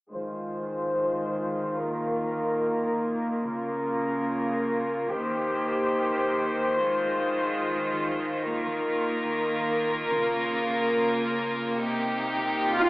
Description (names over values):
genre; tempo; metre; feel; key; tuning
dubstep; free time; none; none; F minor; A4 = 440 Hz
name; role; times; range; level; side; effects
rich chamber string section; sustained chords; 0.1-12.9 s; C3 to C5; -25 LUFS; equal; low-pass filter
swell; sound effects; 12.7-12.9 s; none; -22 LUFS; right 1 dB; none
room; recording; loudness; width
wet lush hall reverb, RT60 2.8 s; AM radio sound; -25 LUFS; side -21 dB against mid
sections
0.1-12.9 A section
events
filter sweep on string section 0.1-12.9; swell 12.7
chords
0.1 Fm7; 1.8 Ebsus2; 3.4 Bbm; 5.1 Cm7; 6.8 Fm7; 8.4 Ebsus2; 10.1 Bbm; 11.8 Cm7